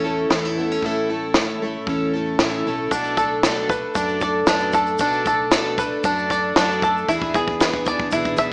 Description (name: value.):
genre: indie folk with a building arrangement.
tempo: 115 BPM.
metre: 4/4.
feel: straight.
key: unclear.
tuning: A4 = 440 Hz.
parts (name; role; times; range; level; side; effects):
fingerpicked steel-string acoustic guitar; accompaniment; 0.0-2.9 s; A2 to A4; -26 LUFS; equal; none.
picked plugged-in twelve-string acoustic guitar; accompaniment; 0.0-8.5 s; A2 to A4; -23 LUFS; equal; none.
hollow-body short-scale fingered electric bass; bass; 0.0-8.5 s; A1 to F#2; -33 LUFS; equal; none.
compact cocktail drum kit; drums; 0.3-8.5 s; kick drum, snare drum; -21 LUFS; equal; none.
bluegrass banjo; arpeggios; 2.9-8.5 s; D4 to E5; -20 LUFS; equal; none.
tube shaker; percussion; 2.9-8.5 s; none; -38 LUFS; equal; none.
room: moderate large studio reverb, RT60 0.9 s, studio ambience.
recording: small speaker sound.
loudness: -18 LUFS.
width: side -37 dB against mid.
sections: 0.0-8.5 A section.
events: build-up 0.0-8.5; drum fill 0.0-8.5.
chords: 0.0 A; 2.9 Bm7; 7.1 E7.